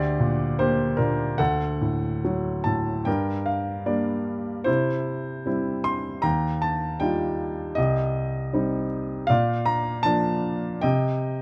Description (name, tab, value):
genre	classical, lyrical solo piano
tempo	77 BPM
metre	4/4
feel	rubato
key	G minor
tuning	A4 = 444 Hz
part	warm baby grand piano	solo	0.0-11.4 s	C2 to C6	-25 LUFS	equal	none
room	light reverb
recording	none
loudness	-25 LUFS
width	mono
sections	0.0-3.1 A section; 3.1-11.4 B section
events	none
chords	0.0 Gm/D; 1.4 D; 3.1 Gm; 4.7 C; 6.2 Ebadd9; 7.8 Cm; 9.3 Bb; 10.8 Cm